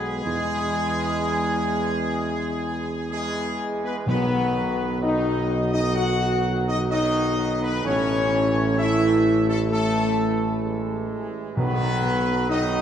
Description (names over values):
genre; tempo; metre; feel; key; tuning
classical; 64 BPM; 4/4; straight; B major; A4 = 440 Hz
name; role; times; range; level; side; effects
warm trumpet section; melody; 0.0-12.8 s; G#4 to F#5; -27 LUFS; left 1 dB; none
bright trombone section; sustained chords; 0.0-12.8 s; D#3 to B3; -32 LUFS; right 3 dB; none
mellow French horn section; sustained chords; 0.0-12.8 s; G#3 to F#4; -26 LUFS; left 2 dB; none
mellow tuba; bass; 0.0-12.8 s; A1 to E2; -25 LUFS; right 2 dB; none
timpani; percussion; 4.1-5.4, 11.6-12.8 s; B2; -29 LUFS; equal; none
room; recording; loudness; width
wet church reverb, RT60 3.4 s; dark, warm production; -21 LUFS; side -9 dB against mid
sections
0.0-12.8 A section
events
none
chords
0.3 E; 4.1 B; 7.8 A; 11.6 B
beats
| 0.26 1.22 2.17 3.12 | 4.07 5.01 5.96 6.90 | 7.84 8.78 9.71 10.64 | 11.57 12.49